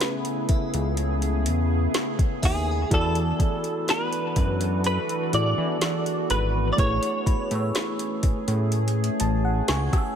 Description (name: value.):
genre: contemporary R&B.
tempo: 62 BPM.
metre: 4/4.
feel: straight.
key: unclear.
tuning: A4 = 439 Hz.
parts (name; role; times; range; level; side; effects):
direct-recorded clean electric guitar; melody; 0.0-10.1 s; G#4 to D5; -28 LUFS; equal; ensemble chorus, ping-pong delay.
FM electric piano with auto-pan; accompaniment; 0.0-10.2 s; C#3 to A5; -31 LUFS; right 1 dB; none.
deep dark ambient pad; sustained chords; 0.0-10.2 s; C#3 to A4; -29 LUFS; equal; chorus, built-in reverb.
smooth R&B drum kit; drums; 0.0-10.2 s; hi-hat, kick drum, rim click, snare drum; -25 LUFS; equal; none.
fat analog bass; bass; 0.5-9.9 s; G#1 to E3; -25 LUFS; equal; none.
glassy synth bell; texture; 0.5-10.2 s; E5 to E6; -39 LUFS; equal; chorus, ping-pong delay.
room: digital ambience.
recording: none.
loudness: -22 LUFS.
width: side -8 dB against mid.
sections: 0.0-10.2 A section.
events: FM electric piano fill 8.7-10.2.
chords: 0.0 Amaj9/C#; 2.9 E7sus4; 6.8 Amaj9.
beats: 0.01 0.97 1.94 | 2.91 3.88 4.85 5.81 | 6.78 7.75 8.72 9.69.